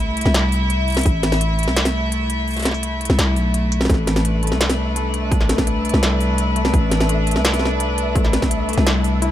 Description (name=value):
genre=half-time drum and bass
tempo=169 BPM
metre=4/4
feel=half-time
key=A minor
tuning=A4 = 435 Hz
part: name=clear studio string section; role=sustained chords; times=0.0-9.3 s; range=A3 to E5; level=-23 LUFS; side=equal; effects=sidechain pumping
part: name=growling 808-style bass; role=bass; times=0.0-9.3 s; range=A1 to C2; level=-20 LUFS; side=equal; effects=none
part: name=industrial drum kit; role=drums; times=0.2-9.3 s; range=hi-hat, snare drum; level=-22 LUFS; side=equal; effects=none
part: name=electronic kick drum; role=drums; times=1.1, 3.9-8.5 s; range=none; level=-20 LUFS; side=equal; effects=none
part: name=felt-muted upright piano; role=arpeggios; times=3.9-9.3 s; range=A3 to E4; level=-26 LUFS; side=left 5 dB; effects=vintage 12-bit sampler grit, dub echo
part: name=flickering grainy texture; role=texture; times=4.3-9.3 s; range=E5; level=-30 LUFS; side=right 2 dB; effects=built-in reverb
room=light reverb, digital ambience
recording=none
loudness=-16 LUFS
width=side -12 dB against mid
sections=0.0-9.3 A section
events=kick drops out 2.5-3.9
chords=0.0 Amadd9